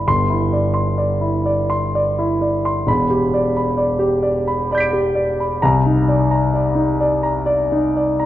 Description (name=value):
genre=classical, impressionist solo piano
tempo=65 BPM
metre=3/4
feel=rubato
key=unclear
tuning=A4 = 440 Hz
part: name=warm concert grand piano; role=solo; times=0.0-8.3 s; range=E1 to D7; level=-15 LUFS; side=equal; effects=none
room=moderate concert hall reverb, RT60 2.4 s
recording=worn, warbling old tape, cassette tape, warbly pitch drift, nothing above 10.5 kHz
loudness=-15 LUFS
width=side -13 dB against mid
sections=0.0-8.3 A section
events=none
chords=0.1 Cadd9/G; 2.9 Em7; 5.6 Cm9